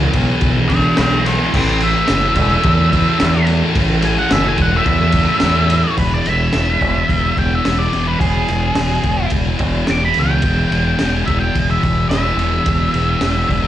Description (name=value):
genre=garage rock duo or trio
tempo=108 BPM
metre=4/4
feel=straight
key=unclear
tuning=A4 = 440 Hz
part: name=thick fuzz guitar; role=riff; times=0.0-13.7 s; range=E2 to A3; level=-18 LUFS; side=left 1 dB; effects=distortion
part: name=growling fingered electric bass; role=bass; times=0.0-13.7 s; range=E1 to E2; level=-18 LUFS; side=equal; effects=overdrive
part: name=crunchy breakbeat drum kit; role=drums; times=0.1-13.6 s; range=crash cymbal, kick drum, ride cymbal, snare drum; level=-20 LUFS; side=equal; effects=none
part: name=octave-fuzz lead guitar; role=melody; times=0.7-13.7 s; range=G4 to D6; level=-19 LUFS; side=equal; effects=distortion, slapback echo
room=small room ambience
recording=live gig heard through the venue's PA, club ambience, nothing above 10.8 kHz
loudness=-13 LUFS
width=side -12 dB against mid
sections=0.0-6.0 A section; 6.0-13.7 B section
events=lead electric guitar solo 0.0-6.0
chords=0.0 E5; 1.5 A5; 6.0 E5